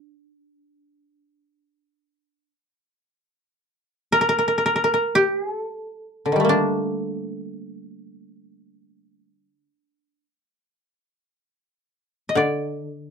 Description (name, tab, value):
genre	japanese traditional, Japanese chamber music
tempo	free time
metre	none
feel	none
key	D miyako bushi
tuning	A4 = 440 Hz
part	koto	melody	0.0-13.1 s	D3 to Eb5	-20 LUFS	equal	none
part	koto	accompaniment	12.4-13.1 s	D3	-24 LUFS	left 2 dB	none
room	moderate small room reverb, RT60 0.5 s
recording	dark, warm production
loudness	-20 LUFS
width	side -6 dB against mid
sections	0.0-11.2 A section; 11.2-13.1 A section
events	none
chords	none